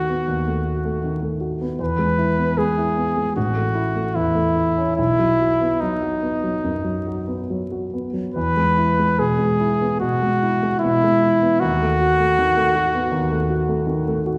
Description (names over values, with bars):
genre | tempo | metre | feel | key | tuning
classical, romantic duo for trumpet and grand piano | 69-81 BPM | 4/4 | rubato | E major | A4 = 441 Hz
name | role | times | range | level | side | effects
warm trumpet | melody | 0.0-14.3 s | D#4 to B4 | -22 LUFS | equal | none
dark grand piano | accompaniment | 0.0-14.4 s | A1 to F#4 | -24 LUFS | equal | none
room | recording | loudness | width
wet recital hall reverb, RT60 1.3 s | heard from further back in the room, vinyl crackle | -20 LUFS | mono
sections
0.0-14.4 A section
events
none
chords
0.0 B7/D#; 1.8 E; 3.4 A; 5.0 B; 8.4 E; 11.6 B7/D#